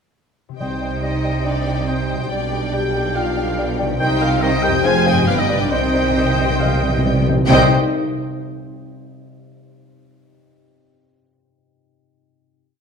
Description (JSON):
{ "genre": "classical, dramatic, fast romantic movement for symphony orchestra", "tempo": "140 BPM", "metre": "4/4", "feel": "straight", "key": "C minor", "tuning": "A4 = 441 Hz", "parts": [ { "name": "concert harp", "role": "arpeggios", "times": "0.5-7.7 s", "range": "F2 to Eb5", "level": "-26 LUFS", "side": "left 7 dB", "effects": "none" }, { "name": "clear symphonic violin section", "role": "melody", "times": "0.6-7.7 s", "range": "G5 to Ab5", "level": "-26 LUFS", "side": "left 4 dB", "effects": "none" }, { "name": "clear symphonic violin section", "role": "second line", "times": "0.6-7.7 s", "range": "C5 to Ab5", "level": "-29 LUFS", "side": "left 4 dB", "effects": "none" }, { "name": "concert flute", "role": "second line", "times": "0.6-7.7 s", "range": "D5 to G5", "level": "-31 LUFS", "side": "left 3 dB", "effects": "none" }, { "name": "warm clarinet", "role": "second line", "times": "0.6-7.7 s", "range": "B4 to G5", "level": "-30 LUFS", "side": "left 2 dB", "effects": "none" }, { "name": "warm oboe", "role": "second line", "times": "0.6-7.7 s", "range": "C5 to Ab5", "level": "-28 LUFS", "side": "right 2 dB", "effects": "none" }, { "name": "clear studio viola section", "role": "accompaniment", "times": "0.6-7.7 s", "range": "B4 to F5", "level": "-28 LUFS", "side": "right 1 dB", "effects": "none" }, { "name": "warm bassoon", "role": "accompaniment", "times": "0.6-7.7 s", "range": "Eb3 to G3", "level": "-28 LUFS", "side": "right 2 dB", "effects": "none" }, { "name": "dark French horn section", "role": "sustained chords", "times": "0.6-7.7 s", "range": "C4 to Ab4", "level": "-26 LUFS", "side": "left 3 dB", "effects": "none" }, { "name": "warm trombone section", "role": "sustained chords", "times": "0.6-7.7 s", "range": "D3 to Eb4", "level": "-28 LUFS", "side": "right 4 dB", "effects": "none" }, { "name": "clear symphonic double bass section", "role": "bass", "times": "0.6-7.7 s", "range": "F1 to C2", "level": "-24 LUFS", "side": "right 4 dB", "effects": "none" }, { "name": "rich symphonic cello section", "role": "bass", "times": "0.6-7.7 s", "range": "F2 to C3", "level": "-24 LUFS", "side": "right 4 dB", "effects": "none" }, { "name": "timpani", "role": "percussion", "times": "0.6-1.2, 5.7-7.7 s", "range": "C3", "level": "-22 LUFS", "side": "equal", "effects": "none" } ], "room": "wet scoring stage reverb, RT60 1.7 s", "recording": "dark, warm production", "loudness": "-15 LUFS", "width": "side -6 dB against mid", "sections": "0.6-7.5 A section; 7.5-9.2 final chord", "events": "timpani fill 5.7-7.5", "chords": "0.6 Cm; 2.3 G7/B; 4.0 Cm; 4.8 Fm; 5.3 G; 5.7 Cm" }